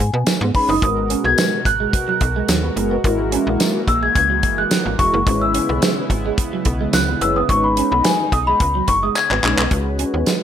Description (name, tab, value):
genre	early-eighties boogie funk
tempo	108 BPM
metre	4/4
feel	straight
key	unclear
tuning	A4 = 440 Hz
part	celesta	melody	0.0-9.7 s	G#5 to G#6	-19 LUFS	left 2 dB	analog delay
part	slap-like FM bass	bass	0.0-10.2 s	E1 to B2	-22 LUFS	equal	none
part	electric guitar at the edge of break-up	riff	0.1-10.4 s	F#3 to D#4	-26 LUFS	right 7 dB	lush chorus
part	damped 70s drum kit	drums	0.3-10.4 s	handclaps, hi-hat, kick drum, snare drum	-19 LUFS	right 1 dB	gated reverb
part	tambourine	percussion	0.3-10.4 s	none	-28 LUFS	left 8 dB	none
part	mellow synth brass	accompaniment	0.5-10.4 s	G#3 to B4	-22 LUFS	left 1 dB	chorus
part	chorused pulse-width pad	sustained chords	1.0-9.7 s	B2 to A#4	-27 LUFS	equal	none
room	light reverb, small room ambience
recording	none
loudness	-15 LUFS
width	side -9 dB against mid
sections	0.0-9.7 A section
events	celesta solo 0.0-9.7; drum fill 9.2-9.7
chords	0.0 B69/G#; 0.8 G#m9; 3.0 F#9/G#; 5.3 C#m7/G#; 7.5 B69/G#; 9.7 C#7sus4